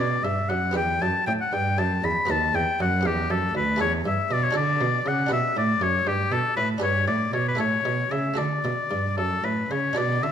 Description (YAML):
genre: classical, baroque-style sonata movement with continuo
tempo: 78 BPM (dotted quarters)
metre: 6/8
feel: straight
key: D major from 3.8 s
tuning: A4 = 440 Hz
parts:
  - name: clear oboe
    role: melody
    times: 0.0-10.3 s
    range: G4 to B5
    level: -24 LUFS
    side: left 4 dB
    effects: none
  - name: buff-stop harpsichord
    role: accompaniment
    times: 0.0-10.3 s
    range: D2 to B4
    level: -30 LUFS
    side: right 3 dB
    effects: none
  - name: warm cello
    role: bass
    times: 0.0-10.3 s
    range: D2 to D3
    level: -27 LUFS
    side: right 2 dB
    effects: none
room: moderate recital hall reverb, RT60 1.6 s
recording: minimal, uncompressed stereo recording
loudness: -22 LUFS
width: side -8 dB against mid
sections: 0.0-10.0 A section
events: none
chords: 0.0 Bm; 0.8 Em; 2.3 B/D#; 3.1 Em; 3.8 A5/E; 4.6 D; 5.3 G; 7.6 A; 8.4 D